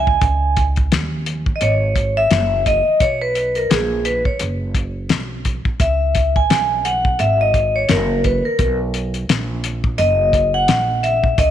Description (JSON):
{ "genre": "hip hop, jazz-hop", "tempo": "86 BPM", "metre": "4/4", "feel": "swing 60% on 16ths", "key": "unclear", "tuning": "A4 = 440 Hz", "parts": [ { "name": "vibraphone with medium hard mallets", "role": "accompaniment", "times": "0.0-11.5 s", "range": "G#4 to G#5", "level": "-17 LUFS", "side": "equal", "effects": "none" }, { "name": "upright bass", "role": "bass", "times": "0.0-11.5 s", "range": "F#1 to D#2", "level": "-21 LUFS", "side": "right 1 dB", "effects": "none" }, { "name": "cloth-damped thuddy drum kit", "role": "drums", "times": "0.1-11.5 s", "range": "hi-hat, kick drum, snare drum", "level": "-19 LUFS", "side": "left 2 dB", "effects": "none" } ], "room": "moderate echo chamber reverb, RT60 2.1 s", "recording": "1960s-style stereo", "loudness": "-15 LUFS", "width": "side -10 dB against mid", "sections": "0.0-11.5 A section", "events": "vibraphone solo 0.0-11.5", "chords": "0.2 C#sus2; 2.3 D#m/F#; 3.0 B5; 5.8 C#5; 7.9 F#; 8.6 B5" }